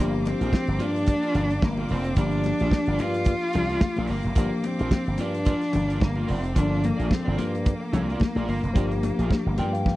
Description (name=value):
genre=disco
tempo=109 BPM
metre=4/4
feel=swing 56% on 16ths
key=G minor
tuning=A4 = 440 Hz
part: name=rich cello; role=melody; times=0.0-10.0 s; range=Bb3 to F4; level=-28 LUFS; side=equal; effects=tape echo
part: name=electric guitar at the edge of break-up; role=accompaniment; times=0.0-9.9 s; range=F4 to F5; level=-36 LUFS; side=right 2 dB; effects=tremolo
part: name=tine electric piano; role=accompaniment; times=0.0-10.0 s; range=F3 to G5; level=-30 LUFS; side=left 3 dB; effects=phaser
part: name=clear studio string section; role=sustained chords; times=0.0-10.0 s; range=Bb3 to D6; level=-40 LUFS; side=left 1 dB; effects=none
part: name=slap bass with an envelope filter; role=bass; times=0.0-9.9 s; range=F1 to G2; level=-27 LUFS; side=equal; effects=none
part: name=damped 70s drum kit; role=drums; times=0.3-10.0 s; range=hi-hat, kick drum, snare drum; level=-22 LUFS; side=right 1 dB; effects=none
part: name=congas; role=percussion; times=0.3-10.0 s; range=none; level=-33 LUFS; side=left 5 dB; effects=none
room=studio reverb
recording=dry, close 1970s-style studio recording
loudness=-22 LUFS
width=side -17 dB against mid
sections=0.0-10.0 A section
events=tine electric piano fill 9.3-10.0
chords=0.0 Gm7